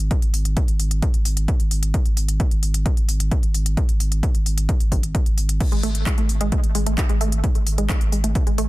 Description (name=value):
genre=driving peak-time techno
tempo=131 BPM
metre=4/4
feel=straight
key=unclear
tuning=A4 = 441 Hz
part: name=saturated sub bass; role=bass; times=0.0-8.7 s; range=G#1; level=-22 LUFS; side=equal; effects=sidechain pumping, low-pass filter
part: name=electronic kick drum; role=drums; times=0.1-8.4 s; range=none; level=-20 LUFS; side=equal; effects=small room ambience
part: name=techno drum kit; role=drums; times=0.1-8.7 s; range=crash cymbal, handclaps, hi-hat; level=-29 LUFS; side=left 1 dB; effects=sidechain pumping on hats, small room ambience, sidechain pumping on cymbals
part: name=wide unison pluck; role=riff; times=5.7-8.6 s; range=G#3 to A3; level=-26 LUFS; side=right 2 dB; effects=tube saturation, sidechain pumping, digital delay
room=digital ambience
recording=dense, heavily limited modern master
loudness=-18 LUFS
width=side -18 dB against mid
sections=0.0-8.7 A section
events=none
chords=none